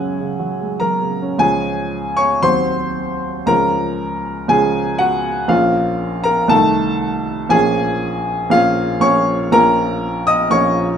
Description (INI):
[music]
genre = classical, romantic character piece for solo piano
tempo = 119 BPM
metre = 4/4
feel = rubato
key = unclear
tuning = A4 = 440 Hz
[part]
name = warm baby grand piano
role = solo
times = 0.0-11.0 s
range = Bb1 to D#6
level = -14 LUFS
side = equal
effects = none
[sound]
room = moderate recital hall reverb, RT60 1.6 s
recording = minimal, uncompressed stereo recording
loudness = -14 LUFS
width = side -8 dB against mid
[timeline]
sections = 0.0-1.4 A section; 1.4-11.0 B section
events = none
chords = 0.0 F#; 1.4 Db; 2.4 Cdim/Eb; 3.5 Db; 5.5 Bbm; 6.5 Adim/C; 7.5 Bbm7; 9.5 A#m